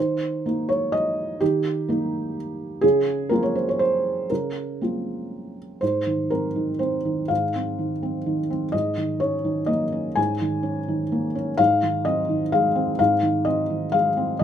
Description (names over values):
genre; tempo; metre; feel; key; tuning
neoclassical minimalist piano; 126 BPM; 3/4; rubato; unclear; A4 = 440 Hz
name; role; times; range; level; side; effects
felt-muted upright piano; solo; 0.0-14.4 s; Ab2 to Ab5; -21 LUFS; equal; none
room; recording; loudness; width
light reverb; minimal, uncompressed stereo recording; -21 LUFS; side -9 dB against mid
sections
0.0-5.8 A section; 5.8-14.4 B section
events
none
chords
0.0 Eb; 2.8 Bbmadd9/Db; 5.8 Fm7/Ab; 8.7 Eb7sus4/Ab; 11.6 Fm7/Ab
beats
0.45 0.93 | 1.40 1.88 2.35 | 2.83 3.31 3.79 | 4.30 4.80 5.31 | 5.82 6.30 6.79 | 7.30 7.78 8.25 | 8.73 9.21 9.69 | 10.18 10.65 11.12 | 11.59 12.05 12.52 | 12.98 13.46 13.94 | 14.42